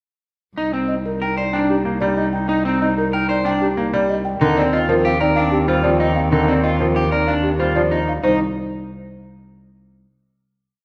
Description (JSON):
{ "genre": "classical, minimalist pattern music", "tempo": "188 BPM", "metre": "6/4", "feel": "straight", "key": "C minor", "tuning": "A4 = 440 Hz", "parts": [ { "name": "bright clarinet", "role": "second line", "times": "0.6-8.0 s", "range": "C4 to Eb4", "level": "-28 LUFS", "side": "equal", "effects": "none" }, { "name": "electric guitar at the edge of break-up", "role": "arpeggios", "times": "0.6-8.4 s", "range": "C4 to C5", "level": "-24 LUFS", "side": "equal", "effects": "none" }, { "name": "rich cello", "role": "bass", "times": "0.6-8.4 s", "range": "C2 to Eb2", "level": "-25 LUFS", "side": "equal", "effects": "none" }, { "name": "buzzing marimba with soft mallets", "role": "melody", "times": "0.9-8.4 s", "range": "G4 to G5", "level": "-24 LUFS", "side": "equal", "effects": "none" }, { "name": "bright grand piano", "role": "accompaniment", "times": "1.9-8.4 s", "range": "D3 to Bb3", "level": "-24 LUFS", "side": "equal", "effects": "none" } ], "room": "moderate scoring stage reverb, RT60 1.9 s", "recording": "none", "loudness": "-18 LUFS", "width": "mono", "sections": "0.6-8.2 A section; 8.2-10.2 final chord", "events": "none", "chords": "0.6 Cm7; 4.4 Eb69; 8.2 Cm" }